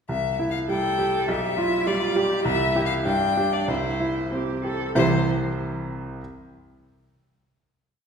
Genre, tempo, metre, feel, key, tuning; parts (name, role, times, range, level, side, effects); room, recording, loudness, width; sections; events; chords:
quick classical-period movement for piano trio; 94-103 BPM; 2/4; rubato; C major; A4 = 440 Hz
clear violin; melody; 0.1-5.3 s; C5 to G5; -27 LUFS; left 6 dB
bright baby grand piano; accompaniment; 0.1-6.2 s; B1 to E5; -24 LUFS; right 1 dB
rich cello; second line; 0.7-5.3 s; E3 to A4; -28 LUFS; right 4 dB
wet recital hall reverb, RT60 1.6 s; heard from further back in the room; -21 LUFS; side -6 dB against mid
0.1-5.0 theme; 5.0-6.2 final chord
0.1 C; 1.3 G7/B; 2.5 C; 3.1 G5; 3.7 C